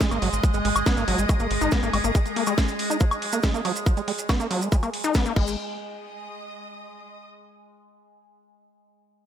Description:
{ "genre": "psychedelic trance", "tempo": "140 BPM", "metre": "4/4", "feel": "straight", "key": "unclear", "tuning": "A4 = 440 Hz", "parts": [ { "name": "overtone-sweeping drone", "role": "sustained chords", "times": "0.0-5.4 s", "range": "G#3", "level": "-30 LUFS", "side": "right 2 dB", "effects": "chorus, built-in reverb, sidechain pumping" }, { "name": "overdriven acid bass", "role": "riff", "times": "0.0-5.6 s", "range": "F#3 to D#4", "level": "-28 LUFS", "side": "moving between left 8 dB and right 7 dB", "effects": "distortion, auto-pan, sidechain pumping, digital delay" }, { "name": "electronic kick drum", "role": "drums", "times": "0.0-5.4 s", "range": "none", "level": "-22 LUFS", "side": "equal", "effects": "overdrive" }, { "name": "techno drum kit", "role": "drums", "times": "0.0-5.4 s", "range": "crash cymbal, hi-hat, snare drum, woodblock", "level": "-29 LUFS", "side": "equal", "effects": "none" }, { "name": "maracas", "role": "percussion", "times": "0.0-5.6 s", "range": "none", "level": "-35 LUFS", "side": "right 5 dB", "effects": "none" }, { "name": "clear symphonic string section", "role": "texture", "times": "0.0-7.3 s", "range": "G#3 to D#6", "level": "-36 LUFS", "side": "left 3 dB", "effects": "sidechain pumping" }, { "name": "tight sequencer bass", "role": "bass", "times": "0.1-2.1, 5.4-5.6 s", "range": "G#1", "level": "-28 LUFS", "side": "equal", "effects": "none" } ], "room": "little or no reverb", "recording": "none", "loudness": "-21 LUFS", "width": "side -9 dB against mid", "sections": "0.0-5.6 A section; 5.6-7.3 B section", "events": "fade-out on string section 0.0-5.6", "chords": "0.0 G#5; 5.4 N.C.; 5.6 G#5", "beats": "0.01 | 0.43 0.86 1.29 1.72 | 2.15 2.58 3.01 3.44 | 3.86 4.29 4.72 5.15 | 5.58 6.01 6.43 6.86" }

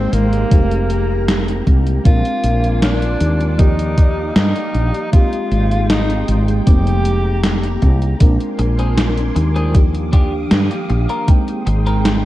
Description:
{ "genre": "vaporwave", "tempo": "78 BPM", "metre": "4/4", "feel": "straight", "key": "Eb major", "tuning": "A4 = 440 Hz", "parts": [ { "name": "breathy tenor saxophone", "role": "melody", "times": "0.0-7.8 s", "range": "Bb3 to G4", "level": "-24 LUFS", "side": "equal", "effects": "tape echo" }, { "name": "FM electric piano with soft pad layer", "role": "accompaniment", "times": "0.0-12.2 s", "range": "Eb3 to G5", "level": "-23 LUFS", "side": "equal", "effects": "wide subtle chorus, analog delay" }, { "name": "soft string machine", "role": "sustained chords", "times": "0.0-12.2 s", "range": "Ab3 to Eb6", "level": "-28 LUFS", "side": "right 1 dB", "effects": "ensemble chorus" }, { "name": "woody fretless electric bass", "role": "bass", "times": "0.0-12.2 s", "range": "F1 to G2", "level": "-16 LUFS", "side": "equal", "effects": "none" }, { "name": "gated 80s digital drum machine", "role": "drums", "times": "0.1-12.2 s", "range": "hi-hat, snare drum", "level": "-21 LUFS", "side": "equal", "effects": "gated reverb, gated reverb snare" }, { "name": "electronic kick drum", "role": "drums", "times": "0.5-11.4 s", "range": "none", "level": "-11 LUFS", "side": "equal", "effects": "none" }, { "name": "clean electric guitar", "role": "riff", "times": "8.6-12.1 s", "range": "C4 to Bb4", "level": "-27 LUFS", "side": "left 2 dB", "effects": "lush chorus, analog delay" } ], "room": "moderate plate reverb, RT60 2.5 s", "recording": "dreamy mix soaked in reverb, cassette tape", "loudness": "-13 LUFS", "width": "side -15 dB against mid", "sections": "0.0-12.2 A section", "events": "none", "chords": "0.0 Abmaj7; 0.5 Fm11; 2.1 Bb9; 3.6 Ebmaj9; 5.1 Abmaj7; 6.7 Fm11; 8.2 Bb9; 9.7 Ebmaj9; 11.3 Abmaj7", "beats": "0.52 1.28 | 2.05 2.82 3.59 4.36 | 5.13 5.90 6.67 7.44 | 8.21 8.98 9.75 10.52 | 11.28 12.05" }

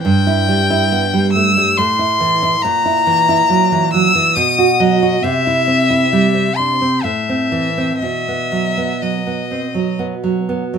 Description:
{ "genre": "romantic duo for violin and classical guitar", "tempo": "59-70 BPM", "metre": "3/4", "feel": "rubato", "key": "unclear", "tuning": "A4 = 438 Hz", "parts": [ { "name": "rich violin", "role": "melody", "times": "0.0-10.0 s", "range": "D#5 to E6", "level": "-16 LUFS", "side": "left 3 dB", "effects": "none" }, { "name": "nylon-string guitar", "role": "accompaniment", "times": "0.0-10.8 s", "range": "G2 to F#4", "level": "-16 LUFS", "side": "right 3 dB", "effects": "none" } ], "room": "moderate studio reverb, RT60 0.8 s", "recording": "minimal, uncompressed stereo recording", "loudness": "-13 LUFS", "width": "side -7 dB against mid", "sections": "0.0-10.8 A section", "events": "none", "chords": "0.0 Em/G; 1.8 Am; 2.6 F#7/A#; 4.4 B; 5.2 C; 7.0 Am; 8.0 B", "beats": "| 0.04 0.91 1.77 | 2.63 3.50 4.37 | 5.25 6.13 7.04 | 8.01 9.01 9.98" }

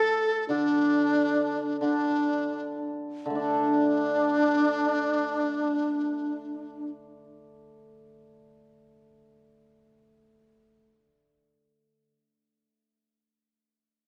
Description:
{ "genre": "chinese traditional, Chinese chamber ensemble", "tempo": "74-104 BPM", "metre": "4/4", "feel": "rubato", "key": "unclear", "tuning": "A4 = 440 Hz", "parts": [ { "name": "bright reedy large dizi", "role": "melody", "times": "0.0-6.9 s", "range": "D4 to A4", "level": "-30 LUFS", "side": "equal", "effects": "none" }, { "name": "xiao", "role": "second line", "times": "0.0-6.9 s", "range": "D4 to A4", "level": "-30 LUFS", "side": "equal", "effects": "none" }, { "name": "hammered dulcimer", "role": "accompaniment", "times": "0.5-12.1 s", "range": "D3 to D4", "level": "-34 LUFS", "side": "equal", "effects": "none" } ], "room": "wet recital hall reverb, RT60 1.6 s", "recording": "none", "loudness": "-26 LUFS", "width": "mono", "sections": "0.0-3.4 A section; 3.4-6.5 B section", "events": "slowing down 0.0-3.4", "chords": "none", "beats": "| 0.50 1.13 1.81 2.57 | 3.36 4.16 4.92 5.70" }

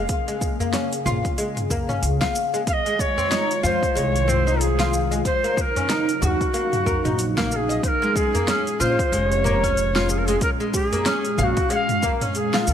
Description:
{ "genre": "organic downtempo", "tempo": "93 BPM", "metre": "4/4", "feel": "swing 59% on 16ths", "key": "Bb minor", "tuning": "A4 = 440 Hz", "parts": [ { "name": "warbly tape-like pad", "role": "sustained chords", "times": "0.0-12.7 s", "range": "Bb2 to Ab4", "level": "-28 LUFS", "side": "equal", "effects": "chorus, built-in reverb, phaser, sidechain pumping" }, { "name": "oud", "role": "arpeggios", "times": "0.0-12.7 s", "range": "Ab3 to F5", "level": "-26 LUFS", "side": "left 2 dB", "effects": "ping-pong delay" }, { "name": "upright bass", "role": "bass", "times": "0.0-12.7 s", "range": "F1 to F2", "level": "-23 LUFS", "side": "equal", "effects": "sidechain pumping" }, { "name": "deep house drum kit", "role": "drums", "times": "0.1-12.7 s", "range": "hi-hat, shaker, snare drum, toms", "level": "-28 LUFS", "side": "equal", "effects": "small room ambience" }, { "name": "electronic kick drum", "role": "drums", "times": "0.1-12.2 s", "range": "none", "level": "-26 LUFS", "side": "equal", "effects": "small room ambience" }, { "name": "udu", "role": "percussion", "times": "0.6-12.2 s", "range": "none", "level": "-29 LUFS", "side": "equal", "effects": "none" }, { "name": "breathy bright Native American-style cedar flute", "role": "melody", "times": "2.7-12.7 s", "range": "Gb4 to Gb5", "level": "-23 LUFS", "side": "equal", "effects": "ping-pong delay" } ], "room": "light reverb, small room ambience", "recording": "lossy compression artefacts", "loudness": "-19 LUFS", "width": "side -9 dB against mid", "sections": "0.0-7.8 A section; 7.8-12.7 B section", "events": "none", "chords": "0.0 Bbm7; 2.7 Fm7; 5.3 Ebm7; 7.8 Bbm7", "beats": "| 0.09 0.74 1.38 2.03 | 2.67 3.32 3.96 4.61 | 5.25 5.90 6.54 7.19 | 7.83 8.48 9.12 9.77 | 10.41 11.06 11.71 12.35" }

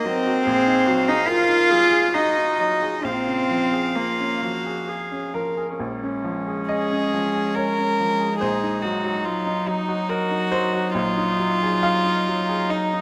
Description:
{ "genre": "neoclassical piano and strings", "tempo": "65-73 BPM", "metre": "3/4", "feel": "rubato", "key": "Bb minor", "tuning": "A4 = 438 Hz", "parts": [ { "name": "warm violin", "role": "melody", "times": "0.0-13.0 s", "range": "Eb4 to F5", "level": "-27 LUFS", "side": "equal", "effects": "none" }, { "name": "rich cello", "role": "second line", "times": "0.0-13.0 s", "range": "Gb3 to F4", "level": "-25 LUFS", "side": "equal", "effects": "none" }, { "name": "clear upright piano", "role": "accompaniment", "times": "0.0-13.0 s", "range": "Bb1 to F5", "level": "-30 LUFS", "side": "equal", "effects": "none" }, { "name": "dark viola", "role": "accompaniment", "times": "0.0-13.0 s", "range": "Db4 to Bb4", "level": "-31 LUFS", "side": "equal", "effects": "none" } ], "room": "moderate plate reverb, RT60 3.5 s", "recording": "rough home demo mix", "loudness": "-22 LUFS", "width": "mono", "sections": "0.0-5.8 A section; 5.8-13.0 B section", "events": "none", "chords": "0.5 Ab5/Bb; 3.0 Bbm7; 8.4 Cm7b5/Bb", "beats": "| 0.46 1.29 2.14 | 3.04 3.96 4.88 | 5.79 6.69 7.56 | 8.41 9.25 10.09 | 10.94 11.84 12.71" }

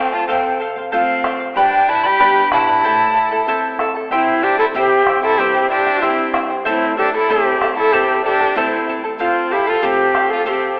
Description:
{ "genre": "andean folk, Andean ensemble", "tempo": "94 BPM", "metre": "2/4", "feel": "straight", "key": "unclear", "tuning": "A4 = 439 Hz", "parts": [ { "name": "breathy large quena", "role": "melody", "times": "0.0-10.8 s", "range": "E4 to B5", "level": "-19 LUFS", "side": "equal", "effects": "none" }, { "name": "clear violin", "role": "second line", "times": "0.0-10.8 s", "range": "C4 to G4", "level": "-23 LUFS", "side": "equal", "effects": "none" }, { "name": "charango", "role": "accompaniment", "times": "0.0-10.8 s", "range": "E4 to B5", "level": "-22 LUFS", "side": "equal", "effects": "none" }, { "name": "nylon-string guitar", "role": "accompaniment", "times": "0.0-10.8 s", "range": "E2 to A4", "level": "-32 LUFS", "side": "equal", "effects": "none" }, { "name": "bombo", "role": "percussion", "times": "0.3-10.6 s", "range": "none", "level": "-28 LUFS", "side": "equal", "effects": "none" }, { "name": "egg shaker", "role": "percussion", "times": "0.3-10.6 s", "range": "none", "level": "-54 LUFS", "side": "equal", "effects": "none" } ], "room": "wet concert hall reverb, RT60 1.7 s", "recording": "telephone sound", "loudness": "-16 LUFS", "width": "mono", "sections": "0.0-4.1 A section; 4.1-10.8 A section", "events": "none", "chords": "0.0 F; 1.6 G; 2.8 Am; 4.1 C; 6.7 Am; 9.2 F", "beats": "| 0.28 0.93 | 1.56 2.20 | 2.84 3.48 | 4.12 4.75 | 5.39 6.03 | 6.66 7.29 | 7.93 8.56 | 9.19 9.82 | 10.46" }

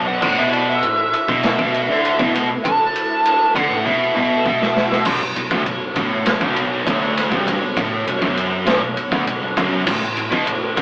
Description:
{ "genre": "stoner and doom metal", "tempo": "100 BPM", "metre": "4/4", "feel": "straight", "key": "B minor", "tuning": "A4 = 441 Hz", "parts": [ { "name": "fuzz lead guitar", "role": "melody", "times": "0.0-5.0 s", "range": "D5 to A5", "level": "-18 LUFS", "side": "equal", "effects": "wah, distortion" }, { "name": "phased string machine", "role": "sustained chords", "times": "0.0-10.8 s", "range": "A3 to D5", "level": "-28 LUFS", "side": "equal", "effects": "ensemble chorus, phaser" }, { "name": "distorted electric guitar", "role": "riff", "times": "0.0-10.8 s", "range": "B1 to D3", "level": "-21 LUFS", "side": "equal", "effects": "overdrive" }, { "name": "thick fuzz guitar", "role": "riff", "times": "0.0-10.8 s", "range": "B1 to D3", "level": "-25 LUFS", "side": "left 1 dB", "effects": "distortion" }, { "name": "thick fuzz guitar", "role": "riff", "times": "0.0-10.8 s", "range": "B1 to D3", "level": "-32 LUFS", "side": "right 1 dB", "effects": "none" }, { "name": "hollow-body short-scale fingered electric bass", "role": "bass", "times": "0.0-10.8 s", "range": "B0 to D2", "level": "-39 LUFS", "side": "equal", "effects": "none" }, { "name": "raw garage drum kit", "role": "drums", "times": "0.2-10.8 s", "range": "crash cymbal, kick drum, ride cymbal, snare drum, toms", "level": "-20 LUFS", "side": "equal", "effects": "none" } ], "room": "moderate studio reverb, RT60 0.5 s", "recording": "rough rehearsal-room recording, warm saturation, AM radio sound", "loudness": "-15 LUFS", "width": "side -24 dB against mid", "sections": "0.0-5.1 A section; 5.1-10.8 B section", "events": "lead electric guitar solo 0.0-5.1; drum fill 3.8-5.1", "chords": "0.2 A5; 5.1 Bm; 9.9 A5", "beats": "| 0.22 0.82 1.43 2.04 | 2.64 3.24 3.85 4.45 | 5.05 5.66 6.26 6.86 | 7.46 8.07 8.67 9.27 | 9.87 10.48" }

